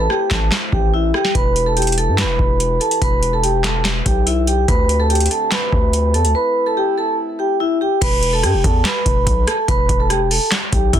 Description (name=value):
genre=hip hop, trap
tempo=144 BPM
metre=4/4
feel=half-time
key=E minor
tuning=A4 = 440 Hz
part: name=vibraphone with medium mallets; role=melody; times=0.0-11.0 s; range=E4 to B5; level=-18 LUFS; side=right 1 dB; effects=none
part: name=warm French horn section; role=sustained chords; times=0.0-8.0 s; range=D3 to B4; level=-30 LUFS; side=left 1 dB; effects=none
part: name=distorted 808-style bass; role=bass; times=0.0-11.0 s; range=E1 to G2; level=-19 LUFS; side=equal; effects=distortion
part: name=booming analog drum machine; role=drums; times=0.1-11.0 s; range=crash cymbal, handclaps, hi-hat, kick drum, rim click, snare drum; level=-18 LUFS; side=equal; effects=overdrive
room=digital ambience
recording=dense, heavily limited modern master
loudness=-14 LUFS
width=side -10 dB against mid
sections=0.0-8.0 A section; 8.0-11.0 B section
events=break 0.0-1.4, 6.3-8.0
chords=0.0 Am; 1.4 Em; 4.7 D7sus4; 6.3 Am; 8.0 Em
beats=0.10 0.52 0.93 | 1.35 1.77 2.18 2.60 | 3.02 3.43 3.85 4.27 | 4.68 5.10 5.52 5.93 | 6.35 6.77 7.18 7.60 | 8.02 8.43 8.85 9.27 | 9.68 10.10 10.52 10.93